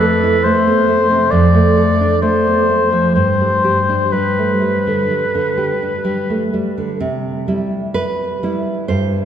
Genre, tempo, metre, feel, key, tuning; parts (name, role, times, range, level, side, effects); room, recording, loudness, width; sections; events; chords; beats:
romantic duo for oboe and classical guitar; 63 BPM; 4/4; rubato; C major; A4 = 440 Hz
warm oboe; melody; 0.0-6.5 s; B4 to D5; -16 LUFS; left 3 dB
nylon-string guitar; accompaniment; 0.0-9.2 s; F2 to C5; -15 LUFS; right 2 dB
wet church reverb, RT60 3.6 s; recorded in a church or concert hall; -13 LUFS; side -9 dB against mid
0.0-7.0 A section; 7.0-9.2 B section
0.0 Fmaj7; 1.3 Dm/F; 3.2 G; 7.0 C
0.44 1.32 2.22 | 3.15 4.12 5.08 6.04 | 7.00 7.94 8.88